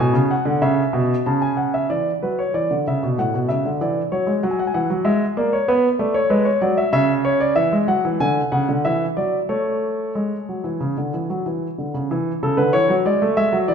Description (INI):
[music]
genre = classical, baroque-style two-part invention for grand piano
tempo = 95 BPM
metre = 4/4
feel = straight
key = A major from 6.9 s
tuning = A4 = 441 Hz
[part]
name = warm grand piano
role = solo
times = 0.0-13.7 s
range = A2 to A5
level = -17 LUFS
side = equal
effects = none
[sound]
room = wet recital hall reverb, RT60 1.7 s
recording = recorded in a church or concert hall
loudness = -18 LUFS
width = side -7 dB against mid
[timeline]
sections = 0.0-1.9 A section; 1.9-12.1 B section; 12.1-13.7 C section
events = none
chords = 0.0 A (rootless); 1.9 E5; 3.2 A; 4.4 F#7; 5.7 Bm; 6.9 C#madd11; 8.2 Dmaj7#11; 8.8 Dadd9/E; 9.5 A